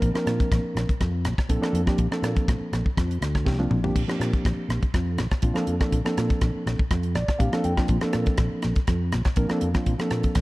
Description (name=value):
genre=electric jazz fusion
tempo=122 BPM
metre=4/4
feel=straight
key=Bb major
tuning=A4 = 440 Hz
part: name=mellow reed electric piano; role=accompaniment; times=0.0-10.4 s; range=F3 to G5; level=-27 LUFS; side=right 1 dB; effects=fast tremolo
part: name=fretless electric bass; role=bass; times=0.0-10.4 s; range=Bb1 to Bb2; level=-26 LUFS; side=equal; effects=ensemble chorus
part: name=tight funk drum kit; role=drums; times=0.0-10.4 s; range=crash cymbal, hi-hat, kick drum, rim click, snare drum, toms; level=-25 LUFS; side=equal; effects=none
room=small room ambience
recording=dark, warm production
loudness=-22 LUFS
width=side -20 dB against mid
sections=0.0-10.4 A section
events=drum fill 3.5-4.0; reed electric piano fill 6.9-7.9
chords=0.0 Bbmaj9